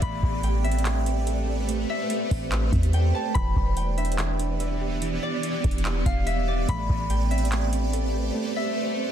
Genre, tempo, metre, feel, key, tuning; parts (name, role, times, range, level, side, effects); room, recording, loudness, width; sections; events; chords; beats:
hip hop, atmospheric cloud-rap; 144 BPM; 4/4; half-time; A minor; A4 = 439 Hz
concert harp; melody; 0.0-9.1 s; D5 to B5; -31 LUFS; left 1 dB; tape echo
granular cloud pad; sustained chords; 0.0-9.1 s; E3 to D5; -30 LUFS; right 1 dB; built-in reverb, sidechain pumping
soft electric-piano-like synth keys; arpeggios; 0.0-9.1 s; E3 to E5; -33 LUFS; right 6 dB; chorus, tape echo
clean 808-style bass; bass; 0.0-8.3 s; E1 to E2; -25 LUFS; equal
booming analog drum machine; drums; 0.0-8.0 s; handclaps, hi-hat, kick drum; -28 LUFS; equal; vintage 12-bit sampler grit
little or no reverb; dense, heavily limited modern master; -22 LUFS; side -10 dB against mid
0.0-9.1 A section
0.0 Am11; 3.4 Em7; 6.7 Am11
| 0.02 0.44 0.85 1.27 | 1.69 2.10 2.52 2.94 | 3.35 3.77 4.19 4.60 | 5.02 5.44 5.85 6.27 | 6.69 7.10 7.52 7.94 | 8.35 8.77